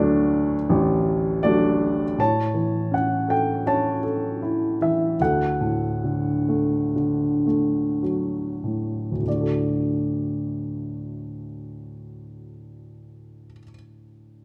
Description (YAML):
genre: classical, lyrical solo piano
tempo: 45-84 BPM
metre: 4/4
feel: rubato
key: D major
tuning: A4 = 440 Hz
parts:
  - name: warm grand piano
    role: solo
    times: 0.0-14.4 s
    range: A1 to A5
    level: -24 LUFS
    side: equal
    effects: none
room: wet recital hall reverb, RT60 1.5 s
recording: dark, warm production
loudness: -23 LUFS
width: mono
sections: 0.0-2.2 A section; 2.2-9.3 B section; 9.3-14.3 C section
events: slowing down 2.2-9.3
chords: 0.0 D; 2.2 A; 5.2 D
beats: 0.70 1.45 | 2.19 2.92 3.66 4.42 | 5.20 6.03 6.96 8.03 | 9.27 10.56 11.81 13.04